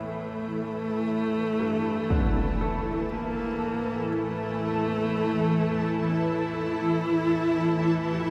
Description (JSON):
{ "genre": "dark ambient drone", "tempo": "free time", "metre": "none", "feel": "none", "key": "A in sen", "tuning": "A4 = 440 Hz", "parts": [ { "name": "rich horsehead fiddle", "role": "melody", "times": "0.0-8.3 s", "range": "A3 to G4", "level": "-30 LUFS", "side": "equal", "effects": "tape echo" }, { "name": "granular cloud pad", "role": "sustained chords", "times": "0.0-8.3 s", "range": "E3 to A5", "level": "-31 LUFS", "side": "equal", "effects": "built-in reverb, ensemble chorus" }, { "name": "bright grand piano", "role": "arpeggios", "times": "0.0-8.3 s", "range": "G2 to A4", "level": "-41 LUFS", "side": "equal", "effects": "tape echo" }, { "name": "organ-like drone", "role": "drone", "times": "0.0-8.3 s", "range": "A1 to A2", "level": "-44 LUFS", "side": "equal", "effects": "ensemble chorus, built-in reverb, phaser" }, { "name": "impact", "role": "percussion", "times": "2.1-2.3 s", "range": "none", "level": "-32 LUFS", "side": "equal", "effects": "low-pass filter on sfx" } ], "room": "wet huge ambient reverb, RT60 8.0 s", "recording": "dreamy mix soaked in reverb", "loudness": "-27 LUFS", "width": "mono", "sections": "0.0-8.3 A section", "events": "fade-in on synth drone 0.0-8.3", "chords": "0.0 A5" }